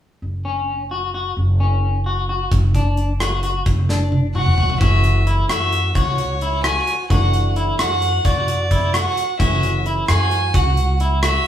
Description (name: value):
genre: progressive instrumental, band music in an uneven meter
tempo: 262 BPM (eighths)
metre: 5/8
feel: straight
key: F# minor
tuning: A4 = 437 Hz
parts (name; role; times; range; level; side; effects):
- upright bass; bass; 0.2-11.3 s; F#1 to F#2; -19 LUFS; equal; none
- electric guitar at the edge of break-up; arpeggios; 0.5-11.5 s; C#4 to F#4; -23 LUFS; left 3 dB; harmonic tremolo
- gated 80s drum kit; drums; 2.5-11.3 s; hi-hat, kick drum, rim click, snare drum, toms; -20 LUFS; equal; none
- rich violin; melody; 4.4-11.5 s; C#5 to G#5; -22 LUFS; right 3 dB; none
- vintage hollow-body jazz guitar; accompaniment; 4.8-11.5 s; E3 to D4; -30 LUFS; left 3 dB; none
room: moderate stone room reverb, RT60 1.0 s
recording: band playing live in one room, small room ambience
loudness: -16 LUFS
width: side -10 dB against mid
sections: 0.2-4.8 A section; 4.8-11.5 B section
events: drum fill 3.9-4.8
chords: 0.2 F#5; 2.5 D/F#; 4.8 F#m7; 7.1 Dadd9/F#; 9.4 F#m7